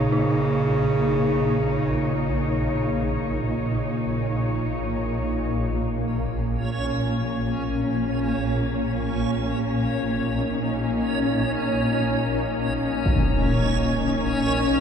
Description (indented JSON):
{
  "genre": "dark ambient drone",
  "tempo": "free time",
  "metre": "none",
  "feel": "none",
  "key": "unclear",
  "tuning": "A4 = 439 Hz",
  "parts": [
    { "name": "dark bass clarinet", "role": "melody", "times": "0.0-4.6 s", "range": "Db3", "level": "-26 LUFS", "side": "right 1 dB", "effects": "ping-pong delay" },
    { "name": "muted symphonic cello section", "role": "sustained chords", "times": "0.0-14.8 s", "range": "Bb3 to Db5", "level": "-27 LUFS", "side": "left 2 dB", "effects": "none" },
    { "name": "swarming drone", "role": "drone", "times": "0.0-14.8 s", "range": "Bb1 to Bb2", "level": "-26 LUFS", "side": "equal", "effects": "built-in reverb" },
    { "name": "dark detuned synth bell", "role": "arpeggios", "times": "0.1-14.8 s", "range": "Eb4 to Bb4", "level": "-36 LUFS", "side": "equal", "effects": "none" },
    { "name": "backwards swelling texture", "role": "texture", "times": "6.4-14.8 s", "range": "Db4 to Db5", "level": "-27 LUFS", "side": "equal", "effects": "built-in reverb" },
    { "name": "impact", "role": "percussion", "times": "13.1-13.3 s", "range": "none", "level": "-25 LUFS", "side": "equal", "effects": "low-pass filter on sfx" }
  ],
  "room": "moderate huge ambient reverb, RT60 7.0 s",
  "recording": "dark, warm production",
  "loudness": "-21 LUFS",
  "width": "side -7 dB against mid",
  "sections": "0.0-5.8 A section; 5.8-14.8 B section",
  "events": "none",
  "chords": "0.0 Bbm"
}